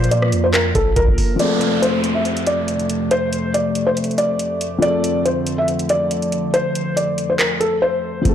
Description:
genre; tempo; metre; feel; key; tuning
hip hop, trap; 140 BPM; 4/4; half-time; F major; A4 = 440 Hz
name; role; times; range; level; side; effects
felt-muted upright piano; melody; 0.0-8.2 s; A4 to E5; -19 LUFS; equal; low-pass filter, ping-pong delay
dark concert grand piano; accompaniment; 0.0-8.3 s; F3 to Bb4; -23 LUFS; left 3 dB; low-pass filter
hollow soft pad; sustained chords; 0.0-8.2 s; F2 to D5; -26 LUFS; right 1 dB; chorus
warm 808-style bass; bass; 0.0-1.2, 8.3 s; F1 to Bb2; -19 LUFS; equal; none
booming analog drum machine; drums; 0.0-8.3 s; handclaps, hi-hat, kick drum, rim click; -22 LUFS; equal; none
downlifter; sound effects; 1.4-4.8 s; none; -26 LUFS; right 1 dB; none
room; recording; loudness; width
light reverb; blown-out, overdriven recording, overdrive; -16 LUFS; side -9 dB against mid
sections
0.0-1.4 A section; 1.4-8.3 B section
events
break 7.8-8.3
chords
0.0 Bb; 1.4 F

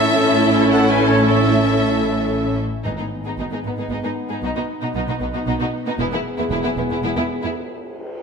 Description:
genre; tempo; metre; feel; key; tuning
cinematic; 114 BPM; 3/4; straight; unclear; A4 = 440 Hz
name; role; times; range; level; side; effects
warm symphonic violin section; melody; 0.0-7.5 s; D#4 to A5; -26 LUFS; left 2 dB; none
bright silver concert flute; second line; 0.0-2.6 s; A4 to C#5; -24 LUFS; equal; none
clear symphonic violin section; second line; 0.0-7.5 s; B3 to A4; -27 LUFS; left 1 dB; none
warm symphonic viola section; accompaniment; 0.0-7.5 s; B3 to E4; -24 LUFS; right 1 dB; none
mellow French horn section; sustained chords; 0.0-7.5 s; A3 to G#4; -23 LUFS; left 1 dB; none
rich symphonic cello section; bass; 0.0-7.5 s; E2 to B2; -25 LUFS; right 2 dB; none
rich symphonic double bass section; bass; 0.0-7.1 s; E1 to B1; -27 LUFS; right 3 dB; none
timpani; percussion; 2.9-3.6 s; G#2; -33 LUFS; left 1 dB; none
reverse cymbal; sound effects; 7.9-8.2 s; none; -51 LUFS; left 1 dB; none
room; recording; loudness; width
wet scoring stage reverb, RT60 1.9 s; none; -17 LUFS; side -6 dB against mid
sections
0.0-2.9 A section; 2.9-8.2 B section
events
break 7.6-8.2; reverse cymbal 7.9-8.2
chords
0.0 A; 2.9 G#m; 4.4 B; 6.0 E; 7.6 N.C.

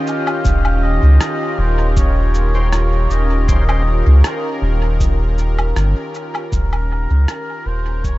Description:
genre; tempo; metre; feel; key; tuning
ambient dub; 79 BPM; 4/4; swing 54% on 16ths; Eb mixolydian; A4 = 440 Hz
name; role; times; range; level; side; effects
warm analog pad; sustained chords; 0.0-8.2 s; Eb3 to Eb5; -23 LUFS; equal; chorus
trumpet with cup mute; melody; 0.1-8.2 s; Bb4 to F5; -26 LUFS; left 1 dB; dub echo
electronic cabasa, woodblock and rim click; drums; 0.1-8.2 s; none; -28 LUFS; left 1 dB; dub echo
warm sub bass; bass; 0.4-8.2 s; Eb1 to Db2; -14 LUFS; equal; none
electronic kick drum; drums; 0.4-8.2 s; none; -19 LUFS; equal; overdrive
overdriven tonewheel organ; stabs; 2.5-3.8 s; Db4 to C5; -32 LUFS; left 2 dB; chorus vibrato, dub echo
room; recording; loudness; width
light reverb; nothing above 7.9 kHz; -14 LUFS; side -18 dB against mid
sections
0.0-8.2 A section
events
fade-out 4.5-8.2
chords
0.0 Eb9

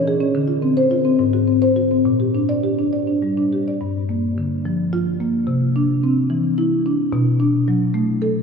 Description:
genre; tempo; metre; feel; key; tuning
classical, contemporary piece for solo marimba; 68-74 BPM (dotted quarters); 6/8; rubato; Bb lydian; A4 = 439 Hz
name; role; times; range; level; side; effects
marimba with soft mallets; solo; 0.0-8.4 s; G2 to D5; -16 LUFS; left 1 dB; none
room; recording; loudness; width
wet cathedral reverb, RT60 6.4 s; none; -16 LUFS; side -5 dB against mid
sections
0.0-3.8 A section; 3.8-8.4 B section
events
none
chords
0.3 Dm7; 1.2 Ab7; 2.1 Bb6; 3.8 Gm7; 5.5 Cadd9; 7.1 Bm7

